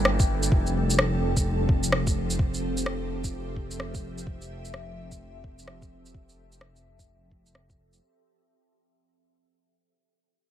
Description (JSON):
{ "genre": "future garage", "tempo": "128 BPM", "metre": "4/4", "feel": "swing 63% on 16ths", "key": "unclear", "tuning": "A4 = 440 Hz", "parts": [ { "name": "felt-muted upright piano", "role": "accompaniment", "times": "0.0-0.7 s", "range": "E3 to Bb3", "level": "-38 LUFS", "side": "right 1 dB", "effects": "sidechain pumping, digital delay" }, { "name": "ethereal airy pad", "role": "sustained chords", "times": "0.0-8.0 s", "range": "F3 to G5", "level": "-33 LUFS", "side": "right 1 dB", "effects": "ensemble chorus, built-in reverb, phaser, sidechain pumping" }, { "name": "dark detuned saw bass", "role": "bass", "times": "0.0-8.0 s", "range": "F1 to G1", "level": "-29 LUFS", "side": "equal", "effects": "tube saturation, sidechain pumping" }, { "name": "electronic rim click and shaker", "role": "drums", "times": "0.1-8.0 s", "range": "none", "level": "-28 LUFS", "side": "equal", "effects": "none" }, { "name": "electronic kick drum", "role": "drums", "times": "0.2-7.8 s", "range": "none", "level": "-25 LUFS", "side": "equal", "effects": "none" } ], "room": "light reverb", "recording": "vinyl crackle", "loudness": "-23 LUFS", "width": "side -11 dB against mid", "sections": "0.0-8.0 A section", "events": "fade-out 0.0-8.0", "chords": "0.0 Gm7; 0.5 Fmaj9" }